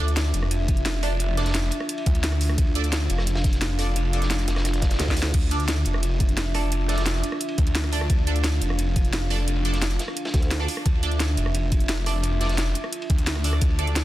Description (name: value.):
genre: dark technical drum and bass.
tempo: 174 BPM.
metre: 4/4.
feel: straight.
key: D minor.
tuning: A4 = 440 Hz.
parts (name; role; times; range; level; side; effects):
dark analog pad; sustained chords; 0.0-14.0 s; D4 to A5; -31 LUFS; right 1 dB; chorus, sidechain pumping.
band-passed chord stab; stabs; 0.0-13.8 s; D4 to D5; -32 LUFS; right 3 dB; phaser, analog chorus, digital delay.
snarling distorted saw bass; bass; 0.0-14.0 s; F1 to D2; -24 LUFS; equal; distortion, tube saturation.
drum and bass drum kit; drums; 0.1-14.0 s; crash cymbal, hi-hat, rim click, snare drum; -29 LUFS; equal; overdrive.
crunchy breakbeat drum kit; drums; 0.2-14.0 s; ride cymbal, snare drum; -36 LUFS; equal; high-pass filter on cymbals, high-pass filter on snare, high-pass filter on room.
electronic kick drum; drums; 0.7-13.7 s; none; -22 LUFS; equal; overdrive.
swell; sound effects; 4.7-5.3 s; none; -39 LUFS; right 4 dB; none.
formant-sweep wobble bass; bass; 5.0-5.3, 10.3-10.7 s; D2; -25 LUFS; equal; chorus.
room: digital ambience.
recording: dense, heavily limited modern master.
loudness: -21 LUFS.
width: side -15 dB against mid.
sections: 0.0-14.0 A section.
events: swell 4.7-5.3; drum fill 5.0-5.3.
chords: 0.0 Dmadd9.